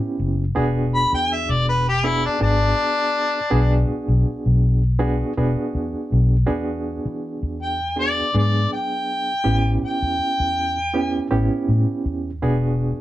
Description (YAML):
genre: straight-eighth soul blues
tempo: 81 BPM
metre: 4/4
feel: straight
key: E mixolydian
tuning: A4 = 440 Hz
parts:
  - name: bright reed electric piano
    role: accompaniment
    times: 0.0-13.0 s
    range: F#3 to G#4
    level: -25 LUFS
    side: right 2 dB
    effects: fast tremolo
  - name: vintage muted fingered electric bass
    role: bass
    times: 0.2-12.9 s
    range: E1 to E3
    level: -20 LUFS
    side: left 1 dB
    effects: none
  - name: mellow harmonica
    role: melody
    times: 0.9-11.3 s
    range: D4 to B5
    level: -21 LUFS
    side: left 1 dB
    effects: overdrive
room: light reverb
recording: band playing live in one room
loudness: -18 LUFS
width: side -14 dB against mid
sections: 0.0-6.5 A section; 6.5-13.0 B section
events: harmonica solo 0.0-6.5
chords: 0.0 A7 (rootless); 0.6 E7; 9.5 A7; 12.4 E7